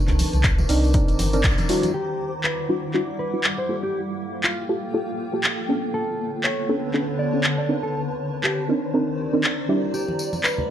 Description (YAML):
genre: deep house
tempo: 120 BPM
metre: 4/4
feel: swing 57% on 16ths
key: unclear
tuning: A4 = 438 Hz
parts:
  - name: dark analog pad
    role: sustained chords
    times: 0.0-10.7 s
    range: D3 to D6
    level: -32 LUFS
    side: equal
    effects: chorus, phaser, sidechain pumping
  - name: deep mellow chord stab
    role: stabs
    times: 0.0-10.7 s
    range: G3 to A#4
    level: -25 LUFS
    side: right 1 dB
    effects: chorus, sidechain pumping, analog delay
  - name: granular cloud pad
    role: texture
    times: 0.0-10.7 s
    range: D3 to D6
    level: -30 LUFS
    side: left 1 dB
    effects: built-in reverb, sidechain pumping
  - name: warm sub bass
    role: bass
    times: 0.1-1.5 s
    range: G1 to C2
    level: -21 LUFS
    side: equal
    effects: sidechain pumping
  - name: punchy analog drum machine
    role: drums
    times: 0.1-10.6 s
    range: handclaps, hi-hat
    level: -24 LUFS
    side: equal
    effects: none
  - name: congas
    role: percussion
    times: 0.1-1.9, 10.1-10.7 s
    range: none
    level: -31 LUFS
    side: right 2 dB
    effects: none
  - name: tambourine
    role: percussion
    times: 0.1-1.9, 9.9-10.6 s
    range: none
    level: -35 LUFS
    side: left 2 dB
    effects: none
  - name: electronic kick drum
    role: drums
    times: 0.4-1.6 s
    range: none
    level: -21 LUFS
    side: equal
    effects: none
  - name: mellow electric guitar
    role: melody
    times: 1.9-10.7 s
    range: F4 to D5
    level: -29 LUFS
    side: equal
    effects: tape echo
room: light reverb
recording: none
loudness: -20 LUFS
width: side -10 dB against mid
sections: 0.0-1.9 A section; 1.9-10.7 B section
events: band accent 1.4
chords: 0.0 Cm9; 1.9 Em9; 3.7 Gm9; 5.7 Bm9; 7.9 Cm9; 9.9 Em9